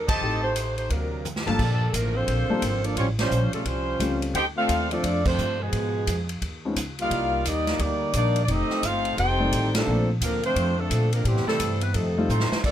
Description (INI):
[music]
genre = jazz, big band swing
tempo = 174 BPM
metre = 4/4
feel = swing 63% on 8ths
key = G minor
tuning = A4 = 440 Hz
[part]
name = warm saxophone section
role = melody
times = 0.0-12.7 s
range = E3 to G5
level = -27 LUFS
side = equal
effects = none
[part]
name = upright bass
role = bass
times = 0.0-12.7 s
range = F1 to Bb2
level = -27 LUFS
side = equal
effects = none
[part]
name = bright trumpet section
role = stabs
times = 0.1-1.9 s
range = G4 to A5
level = -28 LUFS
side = left 1 dB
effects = none
[part]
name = swinging big-band drum kit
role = drums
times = 0.1-12.7 s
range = crash cymbal, hi-hat, kick drum, ride cymbal, snare drum, toms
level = -31 LUFS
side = equal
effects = none
[part]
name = warm grand piano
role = accompaniment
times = 0.2-6.8, 9.4-10.1, 12.2-12.3 s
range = G2 to D5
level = -27 LUFS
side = left 2 dB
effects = none
[part]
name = bright trombone section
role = second line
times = 0.9-12.5 s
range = B2 to A4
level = -30 LUFS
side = equal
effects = none
[sound]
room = light reverb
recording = none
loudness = -22 LUFS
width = side -10 dB against mid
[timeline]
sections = 0.0-1.6 A section; 1.6-12.6 B section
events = band accent 0.0, 3.1, 5.2, 9.7; drum fill 1.2-1.6, 12.3-12.6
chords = 0.2 Am7b5; 0.9 D7b13; 3.0 A7alt; 4.3 Dm7; 5.7 C#9; 7.1 Cm9; 8.5 F13; 9.9 Bbmaj9; 11.3 Am9; 11.9 F7